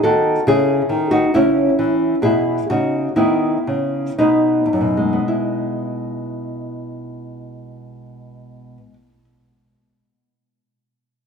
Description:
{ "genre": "classical, baroque-style dance for nylon-string guitar", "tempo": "53-72 BPM", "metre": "3/4", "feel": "rubato", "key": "E major", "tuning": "A4 = 440 Hz", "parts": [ { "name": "nylon-string guitar", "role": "solo", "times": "0.0-9.2 s", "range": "E2 to A4", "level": "-16 LUFS", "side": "equal", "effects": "none" } ], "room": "moderate plate reverb, RT60 3.5 s", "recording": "none", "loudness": "-15 LUFS", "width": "side -6 dB against mid", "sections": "0.0-5.3 A section; 5.3-8.6 B section", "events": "slowing down 0.0-5.3", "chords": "0.0 B (rootless); 1.3 C#m; 2.2 E5/B; 4.2 B; 5.3 E", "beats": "0.47 1.33 | 2.22 3.17 4.20 | 5.30 6.42 7.53" }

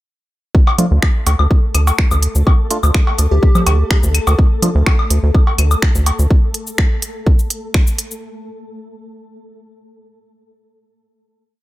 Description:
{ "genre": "minimal techno", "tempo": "125 BPM", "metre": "4/4", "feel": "straight", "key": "unclear", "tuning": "A4 = 443 Hz", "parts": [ { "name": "electronic kick drum", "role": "drums", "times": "0.5-7.8 s", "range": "none", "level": "-12 LUFS", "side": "equal", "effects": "small room ambience" }, { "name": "flickering grainy texture", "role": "texture", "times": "1.3-8.2 s", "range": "A3 to A4", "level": "-29 LUFS", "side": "left 2 dB", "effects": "built-in reverb, sidechain pumping" }, { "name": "cowbell, woodblock, congas and claves", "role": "percussion", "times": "0.7-6.2 s", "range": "none", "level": "-20 LUFS", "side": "left 1 dB", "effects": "overdrive, small room ambience" }, { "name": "percussive organ stab", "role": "stabs", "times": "0.8-4.7 s", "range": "A3 to F4", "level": "-26 LUFS", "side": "right 2 dB", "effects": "chorus, dub echo" }, { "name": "house drum kit", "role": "drums", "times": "0.8-8.2 s", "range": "cabasa, finger snaps, hi-hat", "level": "-21 LUFS", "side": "right 1 dB", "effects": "small room ambience" }, { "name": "rubbery square bass", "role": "bass", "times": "0.9-6.3 s", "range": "D2", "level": "-12 LUFS", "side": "equal", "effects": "sidechain pumping" }, { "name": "plucky unison lead", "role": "melody", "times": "3.3-4.0 s", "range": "G4", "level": "-23 LUFS", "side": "left 1 dB", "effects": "dub echo" } ], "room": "digital ambience", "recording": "none", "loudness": "-12 LUFS", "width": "side -16 dB against mid", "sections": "0.5-8.2 drop", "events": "drop 0.5-8.2", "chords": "0.5 D5", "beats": "| 0.55 1.02 1.50 1.99 | 2.46 2.94 3.42 3.90 | 4.38 4.87 5.34 5.83 | 6.30 6.79 7.26 7.75" }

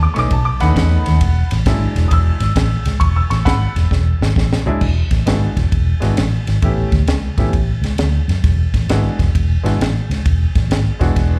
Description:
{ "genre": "electric blues shuffle", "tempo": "133 BPM", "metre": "4/4", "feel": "swing 66% on 8ths", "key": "E mixolydian", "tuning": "A4 = 441 Hz", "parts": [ { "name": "clear upright piano", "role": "accompaniment", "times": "0.0-11.4 s", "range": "F#3 to E6", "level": "-24 LUFS", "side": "equal", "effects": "slapback echo" }, { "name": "vintage muted fingered electric bass", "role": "bass", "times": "0.0-11.4 s", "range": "E1 to F#2", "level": "-18 LUFS", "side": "equal", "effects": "none" }, { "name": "compact cocktail drum kit", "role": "drums", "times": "0.2-11.3 s", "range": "crash cymbal, kick drum, ride cymbal, snare drum", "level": "-20 LUFS", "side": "equal", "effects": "none" } ], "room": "small room ambience", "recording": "live gig heard through the venue's PA, club reverb", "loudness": "-16 LUFS", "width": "mono", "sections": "0.0-4.8 A section; 4.8-11.4 B section", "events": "drum fill 3.9-4.8", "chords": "0.0 B9; 1.2 E9; 6.6 A9; 8.4 E9", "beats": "0.31 0.76 | 1.21 1.66 2.12 2.57 | 3.02 3.47 3.92 4.37 | 4.82 5.28 5.73 6.18 | 6.63 7.08 7.54 7.99 | 8.44 8.90 9.35 9.80 | 10.26 10.71 11.16" }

